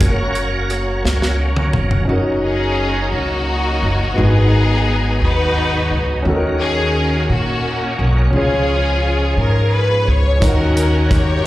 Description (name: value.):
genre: slow gospel.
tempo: 58 BPM (dotted quarters).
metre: 6/8.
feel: straight.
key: F# major.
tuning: A4 = 441 Hz.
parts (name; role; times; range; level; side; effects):
warm concert grand piano; accompaniment; 0.0-11.5 s; G#2 to F#5; -22 LUFS; left 1 dB; slapback echo.
bright tonewheel organ; sustained chords; 0.0-11.5 s; D#3 to F#5; -24 LUFS; right 2 dB; slow rotary speaker, chorus vibrato.
upright bass; bass; 0.0-11.4 s; E#1 to A#2; -17 LUFS; equal; none.
tight funk drum kit; drums; 0.0-2.1, 10.4-11.3 s; hi-hat, kick drum, rim click, snare drum, toms; -17 LUFS; equal; none.
clear studio string section; melody; 2.4-11.5 s; A#3 to C#5; -20 LUFS; left 2 dB; slapback echo.
room: light reverb.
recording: live gig heard through the venue's PA, recital hall reverb.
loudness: -14 LUFS.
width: side -16 dB against mid.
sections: 0.0-2.1 A section; 2.1-11.5 B section.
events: tonewheel organ solo 0.0-2.1; drum fill 1.1-2.1.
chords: 0.0 F#; 2.1 F#6; 4.2 G#m7; 6.3 D#m7; 8.3 C#; 10.4 D#m7.